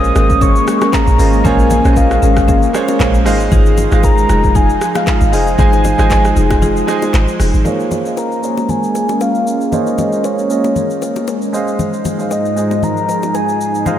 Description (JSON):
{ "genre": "amapiano", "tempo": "116 BPM", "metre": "4/4", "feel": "swing 55% on 16ths", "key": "Bb minor", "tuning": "A4 = 440 Hz", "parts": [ { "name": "soft octave-layered synth lead", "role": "melody", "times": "0.0-14.0 s", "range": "Db5 to Eb6", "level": "-19 LUFS", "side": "left 1 dB", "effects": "chorus, low-pass filter, tape echo" }, { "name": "clear grand piano", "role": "accompaniment", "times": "0.0-14.0 s", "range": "Ab3 to Ab5", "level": "-20 LUFS", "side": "right 4 dB", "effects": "low-pass filter" }, { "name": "lush unison pad", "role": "sustained chords", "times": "0.0-14.0 s", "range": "Ab2 to Eb4", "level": "-19 LUFS", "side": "equal", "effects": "chorus, low-pass filter" }, { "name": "marimba with medium mallets", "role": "stabs", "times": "0.0-7.5 s", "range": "Db4 to Bb4", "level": "-20 LUFS", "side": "left 5 dB", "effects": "tape echo" }, { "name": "deep log drum bass", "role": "bass", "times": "0.0-7.6 s", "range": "F1 to Bb1", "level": "-14 LUFS", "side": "equal", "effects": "none" }, { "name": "afro-pop drum kit", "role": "drums", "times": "0.0-14.0 s", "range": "handclaps, hi-hat, kick drum, rim click, shaker", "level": "-18 LUFS", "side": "equal", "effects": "none" }, { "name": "congas and bongos", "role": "percussion", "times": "0.4-14.0 s", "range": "none", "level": "-24 LUFS", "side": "left 4 dB", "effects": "none" } ], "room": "moderate huge ambient reverb, RT60 4.7 s", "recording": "dreamy mix soaked in reverb", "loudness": "-11 LUFS", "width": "side -11 dB against mid", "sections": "0.0-7.7 A section; 7.7-14.0 B section", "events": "drop 0.0-7.7; break 6.6-7.7", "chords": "0.0 Bbm7; 3.3 Fm7; 7.7 Bbm7; 11.5 Fm7/Ab", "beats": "0.41 0.93 | 1.45 1.97 2.48 3.00 | 3.52 4.04 4.55 5.07 | 5.59 6.11 6.62 7.14 | 7.66 8.17 8.69 9.21 | 9.73 10.24 10.76 11.28 | 11.79 12.31 12.83 13.35 | 13.86" }